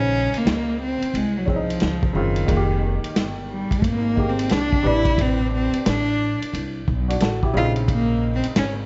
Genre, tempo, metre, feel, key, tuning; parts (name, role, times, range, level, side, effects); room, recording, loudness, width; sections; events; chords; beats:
hip hop, jazz-hop; 89 BPM; 4/4; swing 64% on 16ths; A4 = 440 Hz
warm cello; melody; 0.0-8.7 s; Eb3 to F4; -26 LUFS; equal; slapback echo
warm upright piano; accompaniment; 0.0-8.8 s; C3 to C5; -29 LUFS; equal
upright bass; bass; 0.0-8.9 s; F1 to Db2; -28 LUFS; equal
vintage drum kit; drums; 0.3-8.8 s; hi-hat, kick drum, ride cymbal, snare drum; -27 LUFS; equal
light reverb, small room ambience; dark, warm production, nothing above 7.8 kHz; -21 LUFS; mono
0.0-8.9 A section
cello solo 0.0-8.9
0.0 Bbm11; 2.5 Fm11; 4.9 Am11; 7.5 Bbm11
0.47 1.15 1.82 | 2.49 3.17 3.84 4.52 | 5.19 5.86 6.54 7.21 | 7.89 8.56